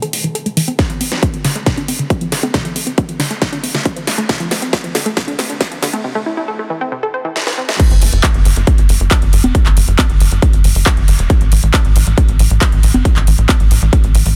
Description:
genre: uplifting trance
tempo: 137 BPM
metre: 4/4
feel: straight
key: D minor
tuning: A4 = 435 Hz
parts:
  - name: unison pluck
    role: arpeggios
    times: 0.0-7.8 s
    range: C3 to C5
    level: -23 LUFS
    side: equal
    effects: sidechain pumping, digital delay
  - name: big-room dance drum kit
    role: drums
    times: 0.0-14.3 s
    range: congas, crash cymbal, handclaps, hi-hat, snare drum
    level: -21 LUFS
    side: equal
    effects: high-pass filter on hats, high-pass filter on snare, high-pass filter on perc, high-pass filter on cymbals, high-pass filter on room
  - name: electronic kick drum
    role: drums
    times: 0.8-14.0 s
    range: none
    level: -15 LUFS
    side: equal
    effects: none
  - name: tight sequencer bass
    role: bass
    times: 7.9-14.3 s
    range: F1 to A1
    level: -15 LUFS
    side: equal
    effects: sidechain pumping
room: little or no reverb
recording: dense, heavily limited modern master, high-pass filter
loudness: -14 LUFS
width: mono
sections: 0.0-7.8 A section; 7.8-14.4 B section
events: build-up 0.0-7.8; filter sweep on synth arpeggio sound 0.0-7.8; drum fill 0.8-6.0, 7.4-7.8; drop 7.8-14.4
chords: 0.0 A5; 0.8 Dm7; 6.0 Am; 7.8 N.C.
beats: 0.35 | 0.79 1.23 1.67 2.10 | 2.54 2.98 3.42 3.85 | 4.29 4.73 5.17 5.61 | 6.04 6.48 6.92 7.36 | 7.80 8.23 8.67 9.11 | 9.55 9.99 10.43 10.86 | 11.30 11.74 12.18 12.61 | 13.05 13.49 13.93

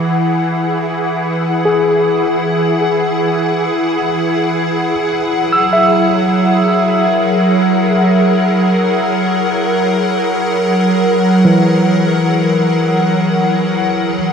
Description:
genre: ambient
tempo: free time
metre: none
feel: none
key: unclear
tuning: A4 = 443 Hz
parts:
  - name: evolving wavetable pad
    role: sustained chords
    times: 0.0-14.3 s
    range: B2 to F#5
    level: -13 LUFS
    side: equal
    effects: ensemble chorus, built-in reverb, shimmer reverb
  - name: overdriven tine electric piano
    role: arpeggios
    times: 0.0-14.2 s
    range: E3 to E6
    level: -17 LUFS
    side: left 1 dB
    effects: tape echo
room: wet huge ambient reverb, RT60 8.2 s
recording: none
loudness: -11 LUFS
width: side -6 dB against mid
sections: 0.0-14.3 A section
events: none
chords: 0.0 E; 4.9 F#7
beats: free time

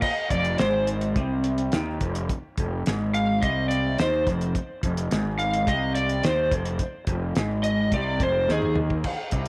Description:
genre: psychedelic rock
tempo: 106 BPM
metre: 4/4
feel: straight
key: unclear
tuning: A4 = 442 Hz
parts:
  - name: overdriven slide guitar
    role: melody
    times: 0.0-8.8 s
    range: Ab4 to F5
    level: -29 LUFS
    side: equal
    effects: tape echo
  - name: cloth-damped thuddy drum kit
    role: drums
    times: 0.0-9.5 s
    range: crash cymbal, hi-hat, kick drum, snare drum, toms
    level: -31 LUFS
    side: equal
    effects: none
  - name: electric guitar through a small old amp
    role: riff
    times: 0.3-9.5 s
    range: F2 to Eb3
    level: -30 LUFS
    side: equal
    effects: phaser
  - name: fuzz fingered electric bass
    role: bass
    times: 0.3-9.5 s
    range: F1 to Eb2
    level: -32 LUFS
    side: equal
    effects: overdrive
room: moderate spring reverb, RT60 2.5 s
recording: none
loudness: -25 LUFS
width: mono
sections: 0.0-9.5 A section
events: electric slide guitar solo 0.0-9.5; drum fill 8.5-9.1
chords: 0.0 F5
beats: | 0.03 0.59 1.16 1.73 | 2.29 2.86 3.42 3.99 | 4.55 5.12 5.68 6.24 | 6.81 7.37 7.93 8.49 | 9.06

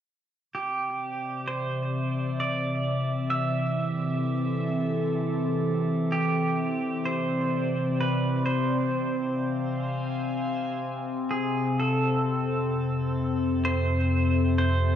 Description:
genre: ambient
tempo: 64 BPM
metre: 3/4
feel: straight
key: C major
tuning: A4 = 438 Hz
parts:
  - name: pedal steel guitar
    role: melody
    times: 0.5-15.0 s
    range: G4 to E5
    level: -30 LUFS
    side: right 3 dB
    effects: analog delay
  - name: evolving wavetable pad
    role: sustained chords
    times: 1.1-15.0 s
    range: C3 to Ab5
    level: -27 LUFS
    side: left 2 dB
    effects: chorus, built-in reverb
  - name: analog drone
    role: drone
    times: 2.2-11.9 s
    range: C3 to E3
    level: -32 LUFS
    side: right 2 dB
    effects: chorus
  - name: glass harmonica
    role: texture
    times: 0.5-11.8 s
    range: C4 to D6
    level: -41 LUFS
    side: right 2 dB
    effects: none
  - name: round analog bass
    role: bass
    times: 11.7-15.0 s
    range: F2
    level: -26 LUFS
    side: right 1 dB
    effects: none
room: wet plate reverb, RT60 2.7 s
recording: dreamy mix soaked in reverb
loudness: -24 LUFS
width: side -9 dB against mid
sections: 0.5-11.8 A section; 11.8-15.0 B section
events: fade-out on glass harmonica 0.5-11.8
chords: 0.5 Cadd9; 3.3 C69; 8.9 Fm; 11.8 Fmaj7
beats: | 0.51 1.45 2.38 | 3.32 4.26 5.20 | 6.13 7.07 8.01 | 8.95 9.88 10.82 | 11.76 12.70 13.63 | 14.57

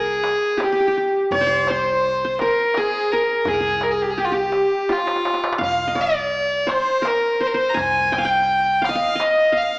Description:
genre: Arabic maqam ensemble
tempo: 84 BPM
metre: 3/4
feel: straight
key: C maqam bayati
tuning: A4 = 440 Hz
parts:
  - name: rich violin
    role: melody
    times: 0.0-9.8 s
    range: F4 to Bb5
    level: -18 LUFS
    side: equal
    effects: none
  - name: qanun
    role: second line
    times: 0.0-9.8 s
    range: F4 to Ab5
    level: -24 LUFS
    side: equal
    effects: none
  - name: upright bass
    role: bass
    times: 0.0-8.9 s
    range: C2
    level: -36 LUFS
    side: equal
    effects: none
  - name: darbuka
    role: percussion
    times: 0.2-9.7 s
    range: none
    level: -31 LUFS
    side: equal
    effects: none
room: wet recital hall reverb, RT60 1.5 s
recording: small speaker sound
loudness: -17 LUFS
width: side -29 dB against mid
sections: 0.0-9.8 A section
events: drum fill 4.9-5.6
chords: none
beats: 0.59 | 1.31 2.03 2.75 | 3.46 4.18 4.90 | 5.61 6.33 7.05 | 7.76 8.48 9.20

